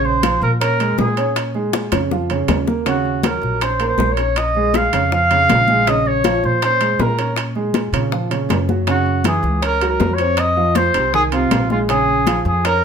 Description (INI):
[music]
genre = Afro-Cuban jazz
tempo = 160 BPM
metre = 4/4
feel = straight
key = Bb minor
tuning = A4 = 440 Hz
[part]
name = mellow trumpet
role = melody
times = 0.0-12.8 s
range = F4 to F5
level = -17 LUFS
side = equal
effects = none
[part]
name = warm grand piano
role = accompaniment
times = 0.0-12.8 s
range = C3 to Db5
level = -21 LUFS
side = right 4 dB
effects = none
[part]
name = upright bass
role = bass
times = 0.0-12.8 s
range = Bb1 to Bb2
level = -22 LUFS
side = left 1 dB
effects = none
[part]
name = congas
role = percussion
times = 0.1-12.8 s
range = none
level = -25 LUFS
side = left 5 dB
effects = none
[part]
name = bongos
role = percussion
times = 0.2-12.8 s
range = none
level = -25 LUFS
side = left 8 dB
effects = none
[part]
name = timbales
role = percussion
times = 0.2-12.8 s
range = none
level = -26 LUFS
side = right 6 dB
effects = none
[sound]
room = moderate studio reverb, RT60 0.8 s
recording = none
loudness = -15 LUFS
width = side -7 dB against mid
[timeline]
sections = 0.0-12.8 A section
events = drum fill 1.7-2.9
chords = 0.0 Bbm7; 2.9 Ebm7; 4.4 Bbm7; 8.9 Gb5; 10.4 Fm7; 11.9 Bbm7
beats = 0.24 0.61 0.99 | 1.36 1.74 2.12 2.49 | 2.87 3.24 3.62 3.99 | 4.37 4.74 5.12 5.49 | 5.87 6.25 6.62 7.00 | 7.37 7.75 8.12 8.50 | 8.88 9.25 9.63 10.01 | 10.38 10.76 11.13 11.51 | 11.89 12.26 12.64